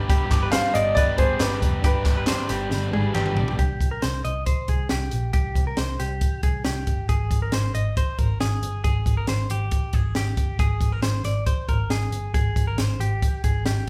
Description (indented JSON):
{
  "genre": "jangly indie pop",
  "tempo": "137 BPM",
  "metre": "4/4",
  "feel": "straight",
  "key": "C minor from 3.6 s",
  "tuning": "A4 = 440 Hz",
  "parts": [
    { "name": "combo organ", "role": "accompaniment", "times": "0.0-3.6 s", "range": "D4 to D5", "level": "-35 LUFS", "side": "equal", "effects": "phaser" },
    { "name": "crunchy overdriven guitar", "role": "accompaniment", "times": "0.0-3.6 s", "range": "G2 to G4", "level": "-33 LUFS", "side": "equal", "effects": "none" },
    { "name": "dark chamber string section", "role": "sustained chords", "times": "0.0-3.5 s", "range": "B3 to G4", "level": "-42 LUFS", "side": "equal", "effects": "none" },
    { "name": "direct-recorded clean electric guitar", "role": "arpeggios", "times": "0.0-13.9 s", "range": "G4 to Eb5", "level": "-33 LUFS", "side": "equal", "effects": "none" },
    { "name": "vintage muted picked electric bass", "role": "bass", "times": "0.0-13.8 s", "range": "F1 to C2", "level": "-28 LUFS", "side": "equal", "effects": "none" },
    { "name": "compact cocktail drum kit", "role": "drums", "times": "0.1-13.8 s", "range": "hi-hat, kick drum, snare drum, toms", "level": "-26 LUFS", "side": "equal", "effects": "none" },
    { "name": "group handclap", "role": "percussion", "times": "0.3-3.3 s", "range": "none", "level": "-37 LUFS", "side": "equal", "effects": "none" },
    { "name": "clear upright piano", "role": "melody", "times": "0.5-3.1 s", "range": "B4 to F5", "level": "-27 LUFS", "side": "equal", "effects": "none" }
  ],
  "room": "wet large studio reverb, RT60 0.8 s",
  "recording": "band playing live in one room",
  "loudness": "-23 LUFS",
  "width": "mono",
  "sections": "0.0-3.6 A section; 3.6-13.9 B section",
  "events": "drum fill 2.7-3.6",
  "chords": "0.0 G; 3.6 C5; 10.6 Bb7sus2"
}